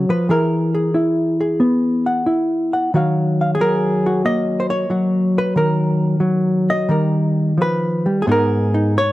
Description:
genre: solo jazz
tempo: 90 BPM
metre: 4/4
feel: swing 69% on 8ths, rubato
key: Eb minor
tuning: A4 = 440 Hz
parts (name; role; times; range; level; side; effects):
- hollow-body jazz guitar; solo; 0.0-9.1 s; Ab2 to F#5; -15 LUFS; equal; none
room: digital ambience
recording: dry, close 1970s-style studio recording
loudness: -15 LUFS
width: side -16 dB against mid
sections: 0.0-8.3 A section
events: none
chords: 0.3 Eadd9; 2.9 Ebm9; 6.9 Eb; 8.3 Abmadd9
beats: | 0.29 0.95 1.61 2.27 | 2.93 3.59 4.25 4.90 | 5.56 6.23 6.90 7.59 | 8.28 8.97

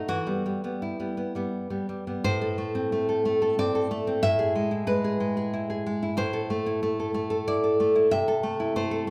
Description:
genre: romantic piece for solo classical guitar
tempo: 82-95 BPM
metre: 3/4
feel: rubato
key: A minor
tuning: A4 = 439 Hz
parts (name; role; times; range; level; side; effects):
- nylon-string guitar; solo; 0.0-9.1 s; A2 to E5; -27 LUFS; equal; none
room: wet recital hall reverb, RT60 1.4 s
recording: recorded in a church or concert hall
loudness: -27 LUFS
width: mono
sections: 0.0-2.2 A section; 2.2-9.1 B section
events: none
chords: 0.1 Em; 2.2 Am; 4.2 E/A; 6.2 Am; 8.1 Am/C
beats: | 0.09 0.81 1.52 | 2.24 2.92 3.58 | 4.23 4.88 5.54 | 6.18 6.83 7.47 | 8.11 8.75

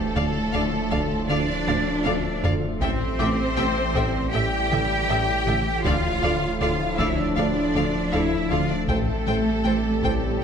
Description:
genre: cinematic, hybrid orchestral and electronic film score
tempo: 79 BPM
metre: 4/4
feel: straight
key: unclear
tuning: A4 = 440 Hz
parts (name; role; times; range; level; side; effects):
- rich symphonic violin section; second line; 0.0-10.4 s; A4 to G5; -30 LUFS; left 2 dB; none
- dark French horn section; sustained chords; 0.0-10.4 s; A3 to E4; -32 LUFS; left 2 dB; none
- mellow trombone section; sustained chords; 0.0-10.4 s; A2 to G3; -33 LUFS; right 1 dB; none
- warbly tape-like pad; sustained chords; 0.0-10.4 s; E3 to A4; -33 LUFS; left 1 dB; chorus, built-in reverb
- rich symphonic cello section; bass; 0.0-10.4 s; A3 to G4; -28 LUFS; right 2 dB; none
- saturated sub bass; bass; 0.0-10.4 s; D1 to A1; -32 LUFS; equal; none
- clear concert grand piano; texture; 0.0-10.4 s; G5 to A6; -36 LUFS; equal; digital delay
- rich studio violin section; melody; 0.2-10.1 s; F5 to G5; -32 LUFS; left 4 dB; none
- rich symphonic viola section; accompaniment; 0.2-10.1 s; A4 to E5; -32 LUFS; equal; none
- smooth gliding synth bass; riff; 0.2-10.4 s; D2 to A3; -31 LUFS; left 3 dB; none
- clear symphonic double bass section; bass; 0.2-10.4 s; A1 to D2; -31 LUFS; right 3 dB; none
- warm tuba; bass; 0.2-10.4 s; A1 to D2; -32 LUFS; right 5 dB; none
- taiko ensemble; drums; 0.9-10.4 s; none; -32 LUFS; equal; none
room: wet scoring stage reverb, RT60 1.8 s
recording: none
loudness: -20 LUFS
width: side -7 dB against mid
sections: 0.0-10.4 A section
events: drum fill 1.7-2.8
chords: 0.0 Dm; 2.8 Am7; 5.9 Dm; 8.9 Am7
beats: 0.54 1.30 2.06 | 2.82 3.58 4.33 5.09 | 5.85 6.61 7.37 8.13 | 8.89 9.65 10.41

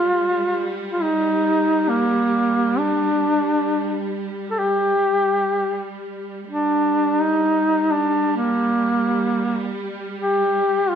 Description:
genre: caucasian folk, Caucasian lament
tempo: free time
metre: none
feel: none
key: G minor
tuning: A4 = 445 Hz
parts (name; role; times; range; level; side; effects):
- warm duduk; melody; 0.0-11.0 s; Bb3 to A4; -18 LUFS; equal; none
- clear studio string section; drone; 0.0-11.0 s; G3; -28 LUFS; right 2 dB; none
room: moderate recital hall reverb, RT60 1.6 s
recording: none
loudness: -18 LUFS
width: side -8 dB against mid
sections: 0.0-6.5 A section; 6.5-11.0 B section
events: none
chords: none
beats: free time

